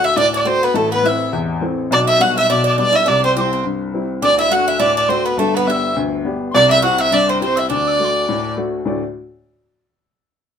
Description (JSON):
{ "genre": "celtic folk", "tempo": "207 BPM", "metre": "4/4", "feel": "swing 56% on 8ths", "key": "D mixolydian", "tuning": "A4 = 439 Hz", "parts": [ { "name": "dark fiddle", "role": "melody", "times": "0.0-8.5 s", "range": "A4 to F#5", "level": "-16 LUFS", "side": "right 1 dB", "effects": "none" }, { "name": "Irish bouzouki", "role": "second line", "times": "0.0-8.5 s", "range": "A3 to F#4", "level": "-22 LUFS", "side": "right 5 dB", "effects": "none" }, { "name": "wooden whistle", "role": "second line", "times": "0.0-8.5 s", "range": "A5 to F#6", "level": "-22 LUFS", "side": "left 4 dB", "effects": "none" }, { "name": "warm upright piano", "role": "accompaniment", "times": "0.0-9.0 s", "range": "G1 to D5", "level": "-20 LUFS", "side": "left 3 dB", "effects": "none" } ], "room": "moderate studio reverb, RT60 0.6 s", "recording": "minimal, uncompressed stereo recording", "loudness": "-14 LUFS", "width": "side -7 dB against mid", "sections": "0.0-8.9 A section; 8.9-10.0 B section", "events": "none", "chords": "0.0 D; 0.7 Am; 1.9 G/B; 3.1 C; 4.2 D; 5.4 G; 6.5 C; 7.7 D", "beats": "0.17 0.46 | 0.75 1.04 1.33 1.62 | 1.91 2.20 2.49 2.78 | 3.07 3.36 3.65 3.94 | 4.23 4.52 4.81 5.09 | 5.38 5.67 5.96 6.25 | 6.54 6.83 7.12 7.41 | 7.70 7.99 8.28 8.56 | 8.85" }